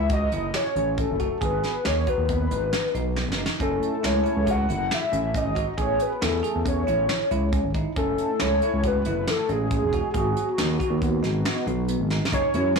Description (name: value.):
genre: progressive instrumental, band music in an uneven meter.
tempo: 138 BPM.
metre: 5/4.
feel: straight.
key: F# dorian.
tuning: A4 = 443 Hz.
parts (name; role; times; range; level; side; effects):
hollow square lead; melody; 0.0-12.8 s; F#4 to F#5; -26 LUFS; left 2 dB; chorus.
bell-like tine electric piano; arpeggios; 0.0-12.7 s; B3 to G#4; -30 LUFS; right 7 dB; fast stereo tremolo, digital delay.
smooth gliding synth bass; bass; 0.0-12.7 s; E1 to F#2; -26 LUFS; equal; none.
soft brush drum kit; drums; 0.1-12.8 s; hi-hat, kick drum, snare drum; -29 LUFS; equal; soft clipping on snare.
dark analog pad; accompaniment; 3.6-12.8 s; G#3 to A4; -34 LUFS; left 2 dB; chorus.
room: light reverb.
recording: blown-out, overdriven recording, overdrive, small room ambience.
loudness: -22 LUFS.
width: side -4 dB against mid.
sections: 0.0-12.3 A section.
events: drum fill 3.2-3.6, 12.1.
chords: 0.0 F#m7; 1.4 G#m7; 3.6 F#m7; 5.8 Amaj7; 8.0 F#m7; 10.1 G#m7.